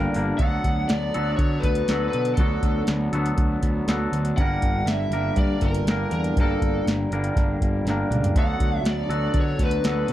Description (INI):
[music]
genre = indie rock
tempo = 121 BPM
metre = 4/4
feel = straight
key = D major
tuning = A4 = 440 Hz
[part]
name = twangy electric guitar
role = riff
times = 0.0-10.1 s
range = G2 to Bb4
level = -26 LUFS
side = left 1 dB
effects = none
[part]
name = fuzz picked electric bass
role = bass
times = 0.0-10.1 s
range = G1 to D3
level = -26 LUFS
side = equal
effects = overdrive
[part]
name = soft vintage rhythm box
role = drums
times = 0.1-10.1 s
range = hi-hat, kick drum, snare drum, toms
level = -24 LUFS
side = equal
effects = overdrive
[part]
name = lead guitar through a small cranked amp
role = melody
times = 0.4-10.1 s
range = A4 to F#5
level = -28 LUFS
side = equal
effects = overdrive
[sound]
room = digital ambience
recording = dark, warm production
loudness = -20 LUFS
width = side -13 dB against mid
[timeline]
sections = 0.4-10.1 A section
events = kick and snare drop out 0.2; drum fill 7.9-8.4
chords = 0.4 D6; 4.4 Gm; 8.4 D6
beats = | 0.41 0.91 1.40 1.90 | 2.40 2.90 3.39 3.89 | 4.39 4.88 5.38 5.88 | 6.37 6.87 7.37 7.86 | 8.36 8.86 9.35 9.85